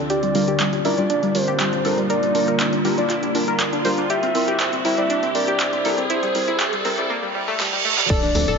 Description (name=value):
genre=progressive house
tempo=120 BPM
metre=4/4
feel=straight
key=unclear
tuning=A4 = 440 Hz
part: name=evolving wavetable pad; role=sustained chords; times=0.0-8.6 s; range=C3 to F4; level=-27 LUFS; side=equal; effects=phaser, built-in reverb, sidechain pumping
part: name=analog pluck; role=arpeggios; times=0.0-8.6 s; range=G3 to C5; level=-24 LUFS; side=equal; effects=chorus, sidechain pumping, ping-pong delay
part: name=riser, reverse cymbal and impact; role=sound effects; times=0.0-8.6 s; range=none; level=-26 LUFS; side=right 2 dB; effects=none
part: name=soft octave-layered synth lead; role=melody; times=0.1-8.6 s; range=C5 to E5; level=-24 LUFS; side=equal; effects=chorus, sidechain pumping, ping-pong delay
part: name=big-room dance drum kit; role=drums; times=0.1-8.6 s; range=crash cymbal, handclaps, hi-hat, snare drum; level=-26 LUFS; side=right 1 dB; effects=overdrive, high-pass filter on hats, high-pass filter on snare, high-pass filter on cymbals
part: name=deep mellow chord stab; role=stabs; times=0.3-8.5 s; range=F3 to D5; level=-26 LUFS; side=equal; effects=chorus, sidechain pumping, ping-pong delay
part: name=soft synth bell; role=second line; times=8.1-8.6 s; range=D5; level=-29 LUFS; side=left 2 dB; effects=none
part: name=electronic kick drum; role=drums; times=8.1-8.2 s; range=none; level=-21 LUFS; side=equal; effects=overdrive
part: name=tambourine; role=percussion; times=8.1-8.6 s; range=none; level=-30 LUFS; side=left 2 dB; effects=none
part: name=tight sequencer bass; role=bass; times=8.3-8.6 s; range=D1 to D2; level=-22 LUFS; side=equal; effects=sidechain pumping
room=moderate huge ambient reverb, RT60 4.5 s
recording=high-pass filter, nothing above 7.5 kHz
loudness=-18 LUFS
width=side -5 dB against mid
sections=0.0-8.1 A section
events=build-up 0.0-8.1; riser 0.0-7.1; filter sweep on synth pluck 0.0-8.1; filter sweep 0.0-8.1; reverse cymbal 7.1-8.1; drum fill 7.6-8.1; impact 8.1-8.6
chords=0.1 Gm7/D; 4.1 C7